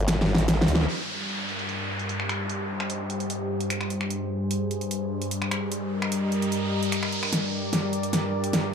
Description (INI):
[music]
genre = heavy wobble dubstep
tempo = 149 BPM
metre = 4/4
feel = half-time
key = G phrygian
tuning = A4 = 440 Hz
[part]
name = lush unison pad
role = sustained chords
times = 0.0-8.7 s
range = G2 to Eb5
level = -28 LUFS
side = left 1 dB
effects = chorus
[part]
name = formant-sweep wobble bass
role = bass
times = 0.0-0.9 s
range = G1 to D2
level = -24 LUFS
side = equal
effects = chorus, overdrive
[part]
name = dubstep drum kit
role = drums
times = 0.1-8.6 s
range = crash cymbal, finger snaps, hi-hat, snare drum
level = -27 LUFS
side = equal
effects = overdrive, low-pass filter on hats, low-pass filter on snare, low-pass filter on cymbals, low-pass filter on room
[part]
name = downlifter and riser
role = sound effects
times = 0.9-8.7 s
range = none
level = -33 LUFS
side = right 1 dB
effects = none
[sound]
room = moderate digital room reverb, RT60 1.1 s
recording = dark, warm production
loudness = -24 LUFS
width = side -7 dB against mid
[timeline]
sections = 0.9-7.3 A section; 7.3-8.7 B section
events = drum fill 0.1-0.9, 7.3-8.7; band accent 0.7; filter sweep on analog synth pad 0.9-7.3; riser 4.1-7.3, 7.3-8.7; build-up 7.3-8.7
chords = 0.0 Gm; 2.5 Cm/G; 4.1 Ab/G; 5.7 Eb/G; 7.3 Gm